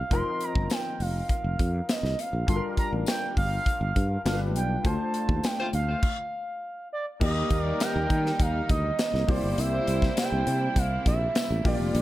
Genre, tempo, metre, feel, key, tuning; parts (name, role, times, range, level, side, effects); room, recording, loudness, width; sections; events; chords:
polished 1980s jazz-funk pop; 101 BPM; 4/4; straight; A4 = 442 Hz
expressive synth lead; melody; 0.0-12.0 s; D5 to C6; -31 LUFS; right 2 dB; chorus
warm concert grand piano; accompaniment; 0.0-12.0 s; F3 to Eb5; -33 LUFS; left 3 dB; ensemble chorus
sustaining fretless electric bass; bass; 0.1-12.0 s; F1 to Eb3; -28 LUFS; equal
modern studio drum kit; drums; 0.1-12.0 s; crash cymbal, hi-hat, kick drum, snare drum; -28 LUFS; equal; gated reverb
tambourine; percussion; 0.7-11.5 s; -43 LUFS; left 7 dB
warm horn section; second line; 5.6-12.0 s; G3 to C5; -35 LUFS; left 2 dB
warm studio string section; sustained chords; 7.2-12.0 s; C3 to F4; -36 LUFS; equal
little or no reverb; -24 LUFS; side -15 dB against mid
0.0-7.2 A section; 7.2-12.0 B section
band accent 4.8-7.2; stop 6.0-7.2
0.0 F7sus4; 2.5 Gm7; 4.3 G7; 4.8 Dm7; 7.2 Eb; 9.3 C7